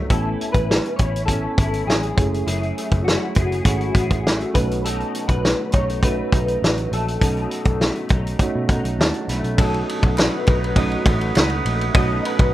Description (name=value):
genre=indie pop, bedroom pop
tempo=101 BPM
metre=4/4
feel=straight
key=unclear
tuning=A4 = 438 Hz
part: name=electric guitar through a small old amp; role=accompaniment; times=0.0-12.5 s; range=F#2 to G#4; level=-31 LUFS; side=left 4 dB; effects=ensemble chorus, warbly pitch drift
part: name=soft electric-piano-like synth keys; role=accompaniment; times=0.0-12.5 s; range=A3 to B5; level=-27 LUFS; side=right 5 dB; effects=chorus, cassette tape
part: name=electric guitar through a small old amp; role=melody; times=0.1-12.5 s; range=E4 to D#5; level=-26 LUFS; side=left 2 dB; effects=ensemble chorus, digital delay
part: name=vintage muted picked electric bass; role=bass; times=0.1-12.5 s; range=F#1 to B2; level=-24 LUFS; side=equal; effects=none
part: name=loose indie drum kit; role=drums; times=0.1-12.5 s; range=hi-hat, kick drum, ride cymbal, snare drum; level=-19 LUFS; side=equal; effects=none
part: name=breathy bright small flute group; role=sustained chords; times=9.6-12.5 s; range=B4 to D#6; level=-28 LUFS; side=right 4 dB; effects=none
part: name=group handclap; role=percussion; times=10.2-11.5 s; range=none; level=-38 LUFS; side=right 4 dB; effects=none
room=light reverb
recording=rough home demo mix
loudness=-17 LUFS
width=side -14 dB against mid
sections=0.0-9.6 A section; 9.6-12.5 B section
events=synth keys fill 8.4-9.6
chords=0.1 Amaj7; 2.2 F#m9; 4.5 B7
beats=| 0.10 0.69 1.29 1.88 | 2.47 3.07 3.66 4.25 | 4.84 5.44 6.03 6.62 | 7.22 7.81 8.40 8.99 | 9.59 10.18 10.77 11.36 | 11.95